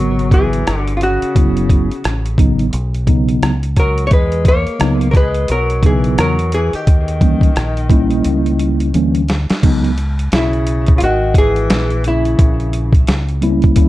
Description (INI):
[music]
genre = hip hop, jazz-hop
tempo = 87 BPM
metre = 4/4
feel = swing 60% on 16ths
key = unclear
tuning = A4 = 440 Hz
[part]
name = archtop guitar, miked and amplified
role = melody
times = 0.0-13.1 s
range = E4 to C#5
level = -19 LUFS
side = equal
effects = tape echo
[part]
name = breathy tenor saxophone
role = second line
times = 0.0-13.0 s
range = C#3 to A#3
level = -23 LUFS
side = left 3 dB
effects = tape echo
[part]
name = mellow tine electric piano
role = accompaniment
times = 0.0-13.9 s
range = C#3 to F#4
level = -16 LUFS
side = equal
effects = medium stereo tremolo
[part]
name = deep dub fingered electric bass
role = bass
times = 0.0-13.9 s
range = F#1 to E2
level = -18 LUFS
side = equal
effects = none
[part]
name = boom bap sampler-style drum kit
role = drums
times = 0.2-13.9 s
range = crash cymbal, hi-hat, kick drum, rim click, snare drum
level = -13 LUFS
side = equal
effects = none
[sound]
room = light reverb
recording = dark, warm production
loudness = -12 LUFS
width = side -16 dB against mid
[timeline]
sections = 0.0-9.6 A section; 9.6-13.9 B section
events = drum fill 8.3-9.6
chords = 0.0 G#m9; 1.4 F#m7; 2.7 Badd9; 4.1 Esus2; 6.9 D#7b9; 9.6 C#m7; 12.4 A#dim